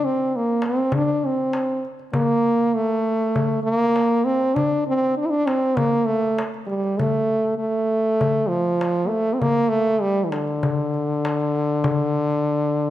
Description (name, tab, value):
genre	Turkish makam ensemble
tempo	99 BPM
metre	4/4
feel	straight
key	D makam nihavent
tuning	A4 = 442 Hz
part	clear French horn	melody	0.0-12.9 s	D3 to E4	-19 LUFS	equal	none
part	darbuka	percussion	0.6-12.4 s	none	-27 LUFS	left 3 dB	none
room	moderate scoring stage reverb, RT60 1.9 s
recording	none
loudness	-19 LUFS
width	side -13 dB against mid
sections	0.0-12.9 A section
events	none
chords	none